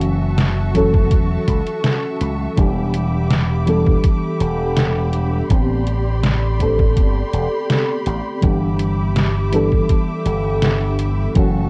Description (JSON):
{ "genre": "vaporwave", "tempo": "82 BPM", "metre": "4/4", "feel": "straight", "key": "unclear", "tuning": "A4 = 440 Hz", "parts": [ { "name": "mellow FM electric piano", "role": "accompaniment", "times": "0.0-11.7 s", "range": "D3 to A4", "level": "-23 LUFS", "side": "equal", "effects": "ensemble chorus, tape echo" }, { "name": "rich studio string section", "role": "sustained chords", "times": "0.0-11.7 s", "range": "F#4 to D6", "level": "-31 LUFS", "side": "equal", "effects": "vintage 12-bit sampler grit" }, { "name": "slap bass with an envelope filter", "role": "bass", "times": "0.0-11.7 s", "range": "E1 to C#2", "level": "-22 LUFS", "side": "equal", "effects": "tube saturation" }, { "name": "detuned 8-bit digital drum machine", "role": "drums", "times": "0.0-11.5 s", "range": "hi-hat, snare drum", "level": "-22 LUFS", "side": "equal", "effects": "none" }, { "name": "electronic kick drum", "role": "drums", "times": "0.7-11.5 s", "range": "none", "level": "-19 LUFS", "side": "equal", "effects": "none" } ], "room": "light reverb, digital ambience", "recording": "dark, warm production, cassette tape", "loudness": "-18 LUFS", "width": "mono", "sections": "0.0-11.7 A section", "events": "none", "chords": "0.0 F#m7; 2.6 Em7; 5.5 Am11; 8.4 G6" }